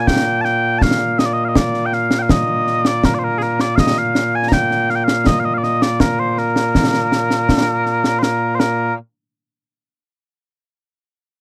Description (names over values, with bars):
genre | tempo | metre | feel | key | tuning
scottish traditional, Scottish pipe music | 81 BPM | 2/4 | straight | Bb major | A4 = 440 Hz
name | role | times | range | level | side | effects
mellow small bagpipes | melody | 0.0-8.9 s | Bb2 to Bb5 | -19 LUFS | equal | none
concert snare drum and concert bass drum | drums | 0.1-8.9 s | none | -20 LUFS | equal | none
room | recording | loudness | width
light reverb | dry, close 1970s-style studio recording | -17 LUFS | mono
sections
0.0-8.2 A section; 8.2-9.7 B section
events
none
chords
none